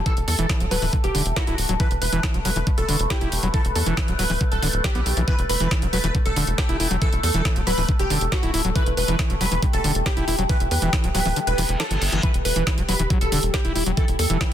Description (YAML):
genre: psychedelic trance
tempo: 138 BPM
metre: 4/4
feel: straight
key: E minor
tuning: A4 = 440 Hz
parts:
  - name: overtone-sweeping drone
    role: sustained chords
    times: 0.0-14.5 s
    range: G3 to B4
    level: -29 LUFS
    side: left 1 dB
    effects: chorus, built-in reverb, sidechain pumping
  - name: tight sequencer bass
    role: bass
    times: 0.0-14.4 s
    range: D1 to E2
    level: -24 LUFS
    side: equal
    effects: none
  - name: supersaw stab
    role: melody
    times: 0.1-14.5 s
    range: F#4 to B4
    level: -28 LUFS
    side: right 1 dB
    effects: phaser, sidechain pumping, ping-pong delay
  - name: overdriven acid bass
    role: riff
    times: 0.1-14.5 s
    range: D3 to E4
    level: -28 LUFS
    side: equal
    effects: auto-pan, sidechain pumping, ping-pong delay
  - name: drum and bass drum kit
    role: drums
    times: 0.1-14.5 s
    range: hi-hat, snare drum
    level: -27 LUFS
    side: right 1 dB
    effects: overdrive
  - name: electronic kick drum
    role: drums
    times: 0.1-14.5 s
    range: none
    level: -22 LUFS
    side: equal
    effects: overdrive
  - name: reverse cymbal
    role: sound effects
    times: 11.5-12.2 s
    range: none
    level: -31 LUFS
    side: equal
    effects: none
room: little or no reverb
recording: dense, heavily limited modern master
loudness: -19 LUFS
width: side -10 dB against mid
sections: 0.0-14.5 A section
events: kick drops out 11.4-12.2; reverse cymbal 11.5-12.2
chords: 0.0 E5